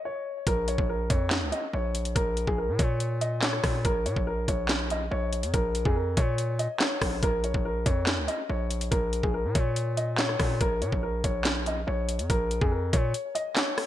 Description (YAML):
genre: hip hop, drill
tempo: 142 BPM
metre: 4/4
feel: half-time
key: Bb minor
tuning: A4 = 442 Hz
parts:
  - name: dark concert grand piano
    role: melody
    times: 0.1-13.9 s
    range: Ab4 to Eb5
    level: -30 LUFS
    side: left 1 dB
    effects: low-pass filter
  - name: distorted 808-style bass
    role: bass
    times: 0.5-13.1 s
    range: Bb1 to Bb2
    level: -30 LUFS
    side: equal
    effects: distortion
  - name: drill drum kit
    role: drums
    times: 0.5-13.9 s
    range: handclaps, hi-hat, kick drum, rim click, snare drum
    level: -27 LUFS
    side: equal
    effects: vintage 12-bit sampler grit, gated reverb
room: digital ambience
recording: bright 1980s-style digital production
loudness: -25 LUFS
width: side -12 dB against mid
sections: 0.5-13.9 A section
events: break 0.0-0.5, 13.1-13.9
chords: 0.5 Bbm